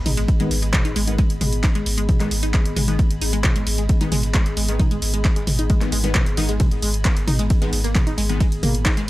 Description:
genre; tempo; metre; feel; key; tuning
driving peak-time techno; 133 BPM; 4/4; straight; G# minor; A4 = 440 Hz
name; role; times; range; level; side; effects
warm sub bass; bass; 0.0-9.1 s; G#1; -24 LUFS; equal; tube saturation, sidechain pumping, low-pass filter
sub drop; sound effects; 0.0-1.2 s; none; barely audible; none; none
airy breathy pad; texture; 0.0-9.1 s; B3 to B5; -31 LUFS; equal; chorus, sidechain pumping
wide unison pluck; riff; 0.1-9.0 s; G#3 to D#4; -28 LUFS; equal; sidechain pumping, tape echo
dusty soul sampler-style drum kit; drums; 0.1-9.1 s; hi-hat, ride cymbal, snare drum; -40 LUFS; right 2 dB; none
punchy analog drum machine; drums; 0.1-9.1 s; handclaps, hi-hat, ride cymbal, toms; -24 LUFS; equal; overdrive, sidechain pumping on hats, sidechain pumping on toms, sidechain pumping on cymbals
electronic kick drum; drums; 0.3-8.9 s; none; -19 LUFS; equal; overdrive
rave stab; stabs; 0.4-8.4 s; D#3 to B3; -28 LUFS; left 2 dB; chorus, built-in reverb, sidechain pumping, tape echo
room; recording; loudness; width
little or no reverb; dry, gritty hardware recording; -17 LUFS; side -17 dB against mid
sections
0.0-9.1 A section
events
impact 0.0-1.2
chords
0.0 G#m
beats
0.28 0.74 | 1.19 1.64 2.09 2.54 | 2.99 3.44 3.89 4.34 | 4.80 5.25 5.70 6.15 | 6.60 7.05 7.50 7.95 | 8.40 8.86

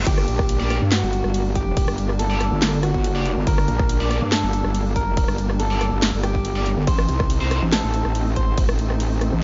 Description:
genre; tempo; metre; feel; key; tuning
heavy wobble dubstep; 141 BPM; 4/4; half-time; G harmonic minor; A4 = 440 Hz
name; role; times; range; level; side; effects
supersaw chords; sustained chords; 0.0-9.4 s; G3 to Eb4; -33 LUFS; equal; sidechain pumping, low-pass filter
tight distorted guitar; stabs; 0.0-7.6 s; A3 to D5; -34 LUFS; equal; distortion, dub echo
metallic wobble bass; bass; 0.0-9.3 s; G1 to C2; -25 LUFS; equal; distortion, chorus, overdrive
electric guitar through a small old amp; melody; 0.1-8.6 s; F#4 to C5; -30 LUFS; equal; dub echo
wobble bass; bass; 0.1-9.4 s; G1 to G2; -24 LUFS; equal; chorus, overdrive
big-room dance drum kit; drums; 0.1-9.3 s; crash cymbal, handclaps, hi-hat, rim click, snare drum; -29 LUFS; equal; none
electronic kick drum; drums; 0.1-8.7 s; none; -24 LUFS; equal; none
room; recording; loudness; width
digital ambience; nothing above 7.5 kHz; -21 LUFS; mono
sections
0.0-9.4 A section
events
none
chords
0.1 Gm; 6.9 Adim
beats
| 0.07 0.49 0.92 1.34 | 1.77 2.19 2.62 3.04 | 3.47 3.90 4.32 4.75 | 5.17 5.60 6.02 6.45 | 6.87 7.30 7.72 8.15 | 8.58 9.00 9.43

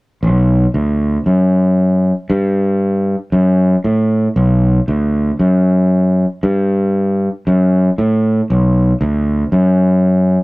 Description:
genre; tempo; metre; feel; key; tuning
metal; 58 BPM; 4/4; straight; B minor; A4 = 440 Hz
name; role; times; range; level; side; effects
growling fingered electric bass; bass; 0.2-10.4 s; B1 to A2; -12 LUFS; equal; overdrive, tube saturation
room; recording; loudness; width
light reverb; rough rehearsal-room recording; -12 LUFS; side -24 dB against mid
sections
0.2-10.4 A section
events
none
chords
none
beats
| 0.22 1.25 2.29 3.32 | 4.36 5.39 6.42 7.45 | 8.48 9.52

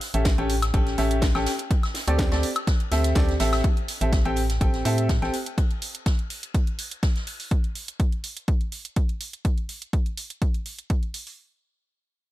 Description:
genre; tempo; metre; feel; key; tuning
piano house; 124 BPM; 4/4; straight; A minor; A4 = 440 Hz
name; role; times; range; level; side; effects
house drum kit; drums; 0.0-11.4 s; hi-hat, snare drum, woodblock; -32 LUFS; right 1 dB; overdrive
unplugged drum kit; drums; 0.0-7.4 s; ride cymbal, snare drum; -37 LUFS; left 1 dB; sidechain pumping on cymbals, high-pass filter on cymbals, high-pass filter on snare, high-pass filter on room
bright baby grand piano; riff; 0.1-5.3 s; C4 to G5; -27 LUFS; equal; sidechain pumping, low-pass filter, ping-pong delay
organ-like FM bass; bass; 0.1-5.3 s; A1 to A2; -24 LUFS; equal; sidechain pumping
electronic kick drum; drums; 0.3-11.0 s; none; -23 LUFS; equal; overdrive
room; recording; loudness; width
studio reverb; none; -22 LUFS; side -15 dB against mid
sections
0.0-3.6 A section; 3.6-11.4 B section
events
none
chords
0.0 A7; 1.7 D7sus4; 3.6 Am7; 5.3 N.C.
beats
0.26 0.74 1.22 | 1.71 2.19 2.67 3.16 | 3.64 4.13 4.61 5.09 | 5.58 6.06 6.54 7.03 | 7.51 8.00 8.48 8.96 | 9.45 9.93 10.42 10.90

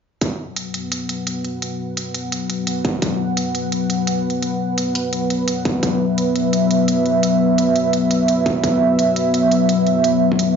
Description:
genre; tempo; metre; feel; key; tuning
half-time drum and bass; 171 BPM; 4/4; swing 57% on 16ths, half-time; unclear; A4 = 441 Hz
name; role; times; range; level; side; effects
dark analog pad; sustained chords; 0.2-10.6 s; F#3 to F#5; -17 LUFS; equal; chorus, sidechain pumping
electronic hi-hat; drums; 0.2-10.5 s; none; -27 LUFS; right 2 dB; small room ambience
electronic kick drum; drums; 0.2-0.3, 2.8-3.1, 5.7-5.9, 8.5-10.4 s; none; -22 LUFS; right 2 dB; distortion, high-pass filter on kick, small room ambience
room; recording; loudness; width
moderate huge ambient reverb, RT60 4.0 s; played on a big sound system in a bare room, large studio reverb, nothing above 7.5 kHz; -16 LUFS; side -6 dB against mid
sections
0.2-10.6 A section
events
none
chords
0.2 B5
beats
| 0.21 0.57 0.92 1.27 | 1.62 1.97 2.32 2.67 | 3.02 3.37 3.72 4.08 | 4.43 4.78 5.13 5.48 | 5.83 6.18 6.53 6.88 | 7.23 7.58 7.93 8.29 | 8.64 8.99 9.34 9.69 | 10.04 10.39

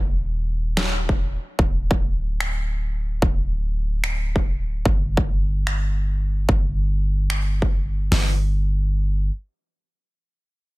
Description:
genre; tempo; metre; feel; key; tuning
future bass; 147 BPM; 4/4; swing 56% on 16ths, half-time; unclear; A4 = 441 Hz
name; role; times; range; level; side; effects
warm 808-style bass; bass; 0.0-9.3 s; D1 to G1; -22 LUFS; equal; tube saturation, sidechain pumping
electronic finger snaps and snare drum; drums; 0.8-7.4 s; none; -27 LUFS; equal; overdrive, soft clipping on snare
dubstep drum kit; drums; 1.1-8.2 s; hi-hat, kick drum, snare drum; -20 LUFS; equal; overdrive
room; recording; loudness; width
little or no reverb; dense, heavily limited modern master; -20 LUFS; side -21 dB against mid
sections
0.0-8.1 A section; 8.1-10.8 B section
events
none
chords
none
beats
0.36 0.77 1.18 | 1.59 2.00 2.40 2.81 | 3.22 3.63 4.04 4.45 | 4.85 5.26 5.67 6.08 | 6.49 6.89 7.30 7.71 | 8.12 8.53 8.94

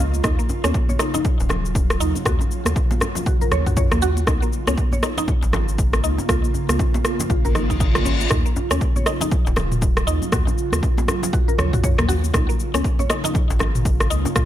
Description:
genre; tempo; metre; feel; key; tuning
afro house; 119 BPM; 4/4; swing 59% on 16ths; Eb minor; A4 = 440 Hz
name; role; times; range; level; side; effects
ethereal airy pad; sustained chords; 0.0-14.5 s; Db3 to F4; -28 LUFS; right 2 dB; ensemble chorus, built-in reverb, sidechain pumping
mallet-like synth pluck; arpeggios; 0.0-14.4 s; Bb3 to Db5; -26 LUFS; equal; analog chorus, sidechain pumping, ping-pong delay
warm sub bass; bass; 0.0-14.5 s; Eb1 to Gb2; -23 LUFS; equal; sidechain pumping
house drum kit; drums; 0.1-14.5 s; rim click, shaker, toms; -25 LUFS; equal; none
congas; percussion; 0.1-14.5 s; none; -32 LUFS; right 4 dB; none
electronic kick drum; drums; 0.2-14.5 s; none; -21 LUFS; equal; none
djembe; percussion; 0.2-14.3 s; none; -32 LUFS; left 2 dB; none
reverse cymbal; sound effects; 7.5-8.3 s; none; -28 LUFS; left 6 dB; none
room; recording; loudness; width
digital ambience; none; -17 LUFS; side -12 dB against mid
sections
0.0-14.5 A section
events
reverse cymbal 7.5-8.3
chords
0.2 Ebm9; 4.3 Db6; 8.3 Ebm9; 12.3 Db6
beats
| 0.24 0.74 1.25 1.75 | 2.26 2.76 3.26 3.77 | 4.27 4.78 5.28 5.79 | 6.29 6.79 7.30 7.80 | 8.31 8.81 9.31 9.82 | 10.32 10.83 11.33 11.84 | 12.34 12.84 13.35 13.85 | 14.36

